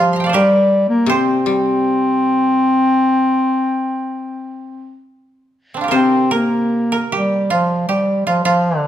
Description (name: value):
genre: japanese traditional, Japanese chamber music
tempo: 66-81 BPM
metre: 4/4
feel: rubato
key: C suspended pentatonic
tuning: A4 = 440 Hz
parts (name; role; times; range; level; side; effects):
- mellow bass clarinet; melody; 0.0-8.9 s; F3 to C4; -15 LUFS; left 1 dB; none
- koto; second line; 0.0-8.9 s; C4 to C6; -19 LUFS; right 3 dB; none
- koto; accompaniment; 0.0-8.3 s; C3 to G3; -23 LUFS; left 2 dB; none
room: light reverb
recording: minimal, uncompressed stereo recording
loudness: -13 LUFS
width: side -11 dB against mid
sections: 0.0-5.9 A section; 5.9-8.9 B section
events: none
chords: none